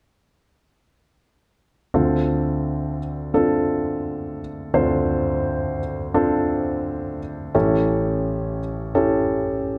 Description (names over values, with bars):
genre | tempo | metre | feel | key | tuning
pop | 86 BPM | 4/4 | straight | D minor | A4 = 440 Hz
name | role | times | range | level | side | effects
dark grand piano | accompaniment | 1.9-9.8 s | A1 to C5 | -22 LUFS | equal | none
room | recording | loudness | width
moderate large studio reverb, RT60 1.2 s | dark, warm production | -22 LUFS | mono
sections
1.9-9.8 A section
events
none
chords
1.9 Dm7; 7.5 A7